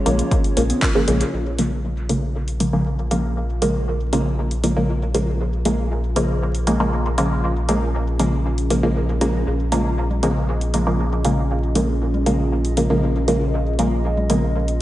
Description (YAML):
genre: dub techno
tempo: 118 BPM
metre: 4/4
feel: straight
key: Bb minor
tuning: A4 = 441 Hz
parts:
  - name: warbly tape-like pad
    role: sustained chords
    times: 0.0-14.8 s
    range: Db4 to Eb5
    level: -29 LUFS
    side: right 1 dB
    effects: chorus, built-in reverb, phaser, sidechain pumping
  - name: filtered dub chord stab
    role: stabs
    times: 0.1-14.5 s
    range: Db3 to Bb3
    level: -21 LUFS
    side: equal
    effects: chorus, phaser, sidechain pumping, dub echo
  - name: round analog bass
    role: bass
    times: 0.1-14.8 s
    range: Bb1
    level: -22 LUFS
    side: equal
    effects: sidechain pumping
  - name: deep house drum kit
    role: drums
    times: 0.1-14.8 s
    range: handclaps, hi-hat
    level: -28 LUFS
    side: equal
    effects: studio ambience, dub echo
  - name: congas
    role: percussion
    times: 0.1-0.8, 9.7-14.4 s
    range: none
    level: -30 LUFS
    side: equal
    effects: none
  - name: electronic kick drum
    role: drums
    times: 0.3-0.9 s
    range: none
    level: -21 LUFS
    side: equal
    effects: studio ambience
room: wet lush hall reverb, RT60 1.6 s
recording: dreamy mix soaked in reverb, vinyl crackle, nothing above 11.0 kHz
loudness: -18 LUFS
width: side -14 dB against mid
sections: 0.0-1.3 A section; 1.3-14.8 B section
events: none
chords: 0.0 Bbm7